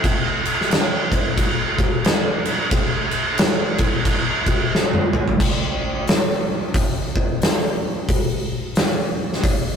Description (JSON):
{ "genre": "metal", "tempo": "89 BPM", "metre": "4/4", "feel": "swing 61% on 8ths", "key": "none", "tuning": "none", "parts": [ { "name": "oversized low-tuned drum kit", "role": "drums", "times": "0.0-9.6 s", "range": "crash cymbal, hi-hat, kick drum, snare drum, toms", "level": "-18 LUFS", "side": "equal", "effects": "none" } ], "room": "light reverb", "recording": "rough rehearsal-room recording, warm saturation", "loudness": "-18 LUFS", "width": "side -7 dB against mid", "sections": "0.0-5.4 A section; 5.4-9.8 B section", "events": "drum fill 4.7-5.4", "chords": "none", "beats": "| 0.04 0.70 1.37 2.04 | 2.71 3.38 4.05 4.72 | 5.39 6.07 6.74 7.41 | 8.09 8.76 9.43" }